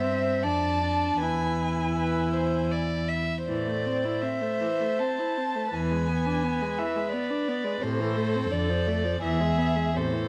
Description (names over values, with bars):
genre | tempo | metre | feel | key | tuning
classical, slow romantic movement for string quartet | 71-89 BPM | 3/4 | rubato | unclear | A4 = 440 Hz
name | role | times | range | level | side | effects
dark violin | melody | 0.0-10.3 s | C5 to A5 | -33 LUFS | equal | none
rich violin | second line | 0.0-10.3 s | G#4 to E5 | -34 LUFS | equal | none
warm viola | accompaniment | 0.0-10.3 s | C3 to E4 | -33 LUFS | equal | none
dark cello | bass | 0.0-10.3 s | E2 to A2 | -31 LUFS | equal | none
room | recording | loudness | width
moderate recital hall reverb, RT60 1.5 s | close, detailed microphones, vinyl crackle | -27 LUFS | mono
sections
0.0-10.3 A section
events
none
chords
0.4 Dm/F; 1.2 E; 3.5 Am; 5.7 E7; 7.8 Am; 8.5 Dm/F; 9.2 E